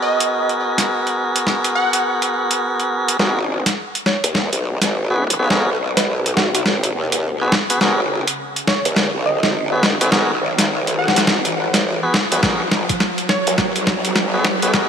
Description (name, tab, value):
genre	glitch hop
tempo	104 BPM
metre	4/4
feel	swing 62% on 16ths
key	G# minor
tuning	A4 = 444 Hz
part	plucky unison lead	melody	0.0-13.5 s	F#4 to F#5	-24 LUFS	equal	phaser, digital delay
part	tonewheel organ	stabs	0.0-14.9 s	B3 to B4	-21 LUFS	equal	overdrive, sidechain pumping, digital delay
part	boom bap sampler-style drum kit	drums	0.2-14.9 s	hi-hat, snare drum	-19 LUFS	equal	overdrive
part	growl bass	bass	3.2-14.9 s	G#1 to D#2	-21 LUFS	equal	chorus, tube saturation, high-pass filter
part	riser	sound effects	4.7-14.9 s	none	-27 LUFS	right 2 dB	none
part	electronic kick drum	drums	12.4-14.9 s	none	-24 LUFS	equal	overdrive
room	moderate lush hall reverb, RT60 2.8 s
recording	bright 1980s-style digital production, high-pass filter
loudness	-15 LUFS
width	side -7 dB against mid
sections	0.0-3.2 A section; 3.2-14.9 B section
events	build-up 3.2-14.9; drum fill 3.2-14.9; filter sweep on digital synth lead 3.2-14.9; riser 4.7-14.9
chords	0.0 G#m9